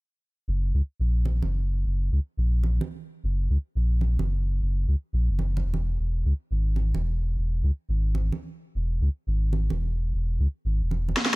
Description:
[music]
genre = liquid drum and bass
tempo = 174 BPM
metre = 4/4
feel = straight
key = unclear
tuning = A4 = 440 Hz
[part]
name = sub bass with octave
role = bass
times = 0.5-11.2 s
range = E1 to C#2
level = -23 LUFS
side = equal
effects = none
[part]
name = congas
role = percussion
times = 1.3-11.2 s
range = none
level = -34 LUFS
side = right 5 dB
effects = none
[part]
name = electronic snare drum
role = drums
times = 11.2-11.3 s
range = none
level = -21 LUFS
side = equal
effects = none
[sound]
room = small room ambience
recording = none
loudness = -24 LUFS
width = side -23 dB against mid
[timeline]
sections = 0.5-11.4 A section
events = drum fill 11.2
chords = none

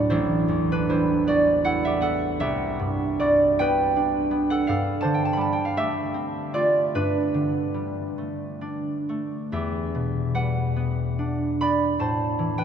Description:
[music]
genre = classical, solo harp piece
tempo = 43-57 BPM (dotted quarters)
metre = 6/8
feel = rubato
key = A dorian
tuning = A4 = 441 Hz
[part]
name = concert harp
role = solo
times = 0.0-12.6 s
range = A1 to B5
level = -21 LUFS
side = right 1 dB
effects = none
[sound]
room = wet cathedral reverb, RT60 5.9 s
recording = none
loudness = -21 LUFS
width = side -8 dB against mid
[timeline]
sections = 0.1-12.6 A section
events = none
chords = 0.1 Am9; 2.4 Cmaj9; 4.6 G9sus4; 6.9 Gadd9; 9.5 Em9; 12.0 Am11

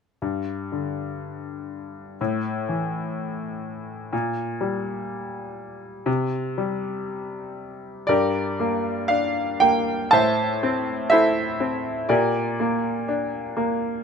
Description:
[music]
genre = classical, lyrical solo piano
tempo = 61 BPM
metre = 4/4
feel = rubato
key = G dorian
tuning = A4 = 437 Hz
[part]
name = bright grand piano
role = solo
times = 0.2-14.0 s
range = G2 to A5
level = -22 LUFS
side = equal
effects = none
[sound]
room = light reverb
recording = none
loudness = -22 LUFS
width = side -6 dB against mid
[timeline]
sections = 0.2-8.1 A section; 8.1-14.0 B section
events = none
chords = 0.2 G5; 2.2 A5; 4.1 Gm/Bb; 6.1 C5; 8.1 Gm; 10.1 Am; 12.1 Gm/Bb

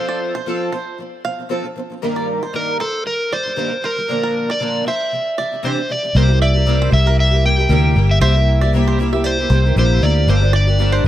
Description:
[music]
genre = acoustic pop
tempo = 116 BPM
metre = 4/4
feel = swing 55% on 16ths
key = unclear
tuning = A4 = 440 Hz
[part]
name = overdriven slide guitar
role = melody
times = 0.0-11.1 s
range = A4 to G5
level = -20 LUFS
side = equal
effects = ping-pong delay
[part]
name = fingerpicked twelve-string acoustic guitar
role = accompaniment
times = 0.0-11.1 s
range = G2 to Bb4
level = -21 LUFS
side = equal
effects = double-tracked left and right
[part]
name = bluegrass banjo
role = arpeggios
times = 0.1-11.0 s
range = Bb4 to F5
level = -28 LUFS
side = right 5 dB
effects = none
[part]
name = vintage muted fingered electric bass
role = bass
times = 6.1-11.1 s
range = G1 to D2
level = -14 LUFS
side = equal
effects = none
[sound]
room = small room ambience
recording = none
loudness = -14 LUFS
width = side -13 dB against mid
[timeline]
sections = 0.0-6.2 A section; 6.2-11.1 B section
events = none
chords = 0.0 F; 2.0 Eb/G; 4.1 Bb; 5.1 Cadd9; 6.2 C7; 10.3 Gm7

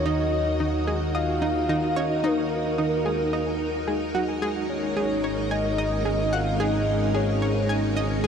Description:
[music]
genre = ambient, sequencer-driven space music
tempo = 110 BPM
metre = 4/4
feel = straight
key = Eb minor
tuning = A4 = 440 Hz
[part]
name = soft octave-layered synth lead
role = melody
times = 0.0-7.7 s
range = Bb4 to F5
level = -28 LUFS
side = equal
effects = chorus, shimmer reverb, analog delay
[part]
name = string machine, full ensemble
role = sustained chords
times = 0.0-8.3 s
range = Ab3 to Eb5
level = -27 LUFS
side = equal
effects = ensemble chorus, shimmer reverb
[part]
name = analog drone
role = bass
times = 0.0-8.3 s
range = Ab1 to Eb2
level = -29 LUFS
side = equal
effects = chorus
[part]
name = analog pluck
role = riff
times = 0.1-8.3 s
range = Eb4 to Ab5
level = -28 LUFS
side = equal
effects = chorus, shimmer reverb, analog delay
[sound]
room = wet huge ambient reverb, RT60 7.4 s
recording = dark, warm production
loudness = -22 LUFS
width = side -7 dB against mid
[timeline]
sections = 0.0-8.3 A section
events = none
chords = 0.0 Ebmadd9; 4.4 Absus4

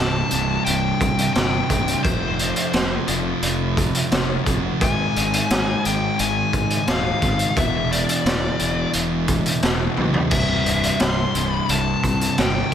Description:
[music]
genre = quiet-loud alternative rock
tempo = 87 BPM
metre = 4/4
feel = straight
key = C major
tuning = A4 = 440 Hz
[part]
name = nasal lead guitar with a parked wah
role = melody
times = 0.0-12.7 s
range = C5 to C6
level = -25 LUFS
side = left 3 dB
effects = overdrive, slapback echo
[part]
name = crunchy overdriven guitar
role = riff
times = 0.0-12.7 s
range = C2 to Ab3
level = -26 LUFS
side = left 11 dB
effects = slapback echo
[part]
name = thick fuzz guitar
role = riff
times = 0.0-12.7 s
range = C2 to Ab3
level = -25 LUFS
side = right 9 dB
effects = distortion
[part]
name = fuzz fingered electric bass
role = bass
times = 0.0-12.6 s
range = C1 to Ab2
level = -27 LUFS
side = equal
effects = overdrive
[part]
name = raw garage drum kit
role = drums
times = 0.3-12.5 s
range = crash cymbal, hi-hat, kick drum, snare drum, toms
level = -22 LUFS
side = equal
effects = none
[sound]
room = light reverb, studio reverb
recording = none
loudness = -18 LUFS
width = side -9 dB against mid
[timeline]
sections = 0.0-12.7 A section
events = drum fill 10.0-10.3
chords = 0.0 C5; 2.1 F5; 4.8 Ab5; 7.6 E5; 10.3 C

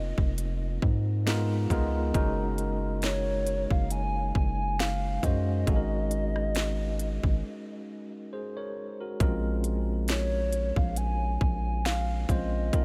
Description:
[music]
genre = contemporary R&B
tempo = 68 BPM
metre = 4/4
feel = swing 54% on 16ths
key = Bb minor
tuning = A4 = 441 Hz
[part]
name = hollow clarinet-like synth lead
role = melody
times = 0.0-12.8 s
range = Db5 to Ab5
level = -36 LUFS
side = equal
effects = chorus, delay
[part]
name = tine electric piano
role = accompaniment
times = 0.0-12.8 s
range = Ab3 to Db5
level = -36 LUFS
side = equal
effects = none
[part]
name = long sustained 808-style bass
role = bass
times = 0.0-12.7 s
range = F1 to Ab2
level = -32 LUFS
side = equal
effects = none
[part]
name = trap drum kit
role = drums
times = 0.2-12.8 s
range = hi-hat, kick drum, rim click, snare drum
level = -32 LUFS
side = equal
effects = none
[sound]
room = light reverb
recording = none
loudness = -28 LUFS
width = mono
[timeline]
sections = 0.0-12.8 A section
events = break 7.4-9.2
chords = 0.0 F7sus4; 1.3 Db13; 2.1 Gb69; 5.7 Ab9sus4; 9.2 Bbm7

